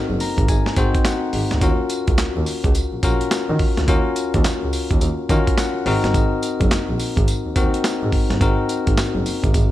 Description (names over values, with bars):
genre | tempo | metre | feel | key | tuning
R&B, new jack swing | 106 BPM | 4/4 | swing 63% on 16ths | unclear | A4 = 439 Hz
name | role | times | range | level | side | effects
bell-like tine electric piano | accompaniment | 0.0-9.7 s | C4 to Bb5 | -22 LUFS | left 4 dB | none
rich double bass | bass | 0.1-9.6 s | Gb1 to Eb3 | -22 LUFS | right 1 dB | none
breakbeat sampler-style drum kit | drums | 0.2-9.7 s | handclaps, hi-hat, kick drum, snare drum, tambourine | -20 LUFS | right 1 dB | none
room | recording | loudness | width
little or no reverb | none | -17 LUFS | side -14 dB against mid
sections
0.0-9.7 A section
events
tine electric piano fill 0.0-1.6, 5.0-6.1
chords
0.0 Ab7; 1.6 Ebm9; 5.9 Ab7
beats
0.48 1.05 | 1.62 2.18 2.75 3.31 | 3.88 4.45 5.01 5.58 | 6.14 6.71 7.28 7.84 | 8.41 8.97 9.54